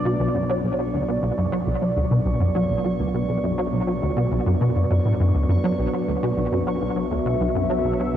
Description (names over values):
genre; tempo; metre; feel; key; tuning
ambient, sequencer-driven space music; 102 BPM; 4/4; straight; B minor; A4 = 439 Hz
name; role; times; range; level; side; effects
sweeping resonant pad; sustained chords; 0.0-8.2 s; F#3 to E5; -25 LUFS; right 1 dB; chorus
analog drone; bass; 0.0-8.2 s; B1; -33 LUFS; equal; chorus
bubbling stepped-filter texture; texture; 0.0-8.2 s; C#6; -41 LUFS; right 3 dB; chorus, built-in reverb
plucky analog bass; riff; 0.1-8.2 s; B1 to F#3; -22 LUFS; equal; ensemble chorus, tape echo
room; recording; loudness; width
moderate lush hall reverb, RT60 2.8 s; worn, warbling old tape, cassette tape, warbly pitch drift; -20 LUFS; side -10 dB against mid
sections
0.0-8.2 A section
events
fade-in on synth texture 0.0-8.2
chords
0.0 Bm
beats
0.20 | 0.79 1.38 1.96 2.55 | 3.14 3.73 4.32 4.91 | 5.49 6.08 6.67 7.26 | 7.85